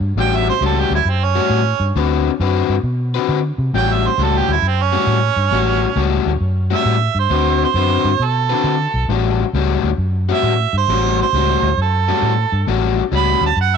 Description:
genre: electric blues shuffle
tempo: 134 BPM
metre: 4/4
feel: swing 66% on 8ths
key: A mixolydian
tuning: A4 = 443 Hz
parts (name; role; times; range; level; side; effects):
- vintage muted fingered electric bass; bass; 0.0-13.8 s; A1 to D3; -18 LUFS; equal; none
- warm harmonica; melody; 0.2-13.8 s; C4 to B5; -19 LUFS; right 12 dB; overdrive
- overdriven semi-hollow guitar; riff; 0.2-13.5 s; A2 to B4; -20 LUFS; left 14 dB; none
room: light reverb, studio ambience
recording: 1960s-style stereo with parts hard left and right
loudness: -14 LUFS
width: side -6 dB against mid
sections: 0.2-13.8 A section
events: harmonica solo 0.2-13.8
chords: 0.2 A6; 2.0 D6; 3.7 A6; 7.3 D6; 9.1 A6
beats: | 0.16 0.61 1.06 1.51 | 1.95 2.40 2.85 3.29 | 3.74 4.19 4.63 5.08 | 5.52 5.97 6.42 6.86 | 7.31 7.75 8.20 8.65 | 9.10 9.54 9.99 10.44 | 10.88 11.33 11.78 12.23 | 12.67 13.12 13.57

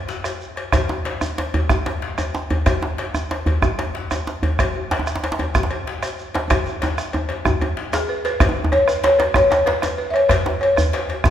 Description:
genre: west african traditional, West African drum ensemble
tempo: 126 BPM (dotted quarters)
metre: 12/8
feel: straight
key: unclear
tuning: A4 = 440 Hz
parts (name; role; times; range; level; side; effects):
- bombo; percussion; 0.1-11.3 s; none; -23 LUFS; right 2 dB; none
- djembe; percussion; 0.1-11.3 s; none; -28 LUFS; left 4 dB; none
- shekere; percussion; 0.1-11.3 s; none; -32 LUFS; right 1 dB; none
- cowbell; percussion; 0.2-11.2 s; none; -29 LUFS; left 3 dB; none
- djembe; percussion; 0.7-11.3 s; none; -23 LUFS; right 1 dB; none
- balafon; melody; 7.9-11.3 s; G#4 to E5; -17 LUFS; left 1 dB; none
room: wet recital hall reverb, RT60 1.6 s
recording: recorded in a church or concert hall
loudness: -18 LUFS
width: side -10 dB against mid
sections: 0.0-8.4 A section; 8.4-11.3 B section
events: speeding up 0.0-11.3; drum fill 6.5-8.4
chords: none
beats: 0.25 | 0.73 1.22 1.70 2.19 | 2.67 3.15 3.63 4.11 | 4.59 5.07 5.55 6.03 | 6.50 6.98 7.46 7.93 | 8.41 8.88 9.36 9.83 | 10.30 10.77 11.25

